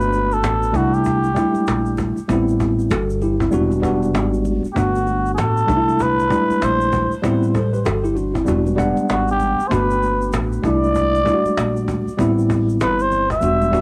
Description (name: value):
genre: hip hop, jazz-hop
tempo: 97 BPM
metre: 4/4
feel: swing 61% on 16ths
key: unclear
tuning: A4 = 441 Hz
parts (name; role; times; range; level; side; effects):
- trumpet with cup mute; melody; 0.0-13.8 s; F#4 to E5; -23 LUFS; equal; cassette tape, tape echo
- tine electric piano; accompaniment; 0.0-13.8 s; G3 to F#5; -22 LUFS; equal; overdrive, cassette tape
- upright bass; bass; 0.0-13.8 s; E1 to C2; -25 LUFS; equal; none
- cajon; drums; 0.0-13.8 s; none; -29 LUFS; equal; none
- tube shaker and congas; percussion; 0.0-13.8 s; none; -36 LUFS; equal; none
room: light reverb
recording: home recording on cassette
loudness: -18 LUFS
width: mono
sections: 0.0-13.8 A section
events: none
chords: 0.0 Gmaj9; 0.7 C69; 2.3 Am7; 3.5 Em9; 4.8 Gmaj9; 5.7 C69; 7.2 Am7; 8.5 Em9; 9.7 Gmaj9; 10.6 C69; 12.2 Am7